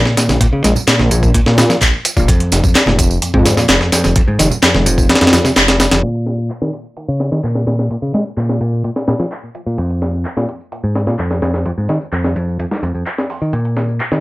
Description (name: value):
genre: breakbeat, breaks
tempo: 128 BPM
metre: 4/4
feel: straight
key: Bb minor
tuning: A4 = 439 Hz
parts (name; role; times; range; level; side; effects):
- picked electric bass; riff; 0.0-14.2 s; F2 to Ab3; -17 LUFS; equal; low-pass filter, tape echo
- dark detuned saw bass; bass; 0.0-6.0 s; F1 to Bb2; -16 LUFS; equal; tube saturation
- breakbeat sampler-style drum kit; drums; 0.1-14.2 s; hi-hat, kick drum, snare drum; -15 LUFS; equal; high-pass filter on snare, high-pass filter on hats, high-pass filter on kick
- electronic tambourine and handclaps; drums; 0.2-14.1 s; none; -19 LUFS; right 1 dB; low-pass filter on perc, low-pass filter on snare
- congas; percussion; 0.3-6.0 s; none; -24 LUFS; right 3 dB; none
room: light reverb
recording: low-pass filter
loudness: -12 LUFS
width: side -18 dB against mid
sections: 0.0-6.0 A section; 6.0-14.2 B section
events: band accent 5.6; filter sweep on picked electric bass 6.0-14.2; filter sweep 6.0-14.2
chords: none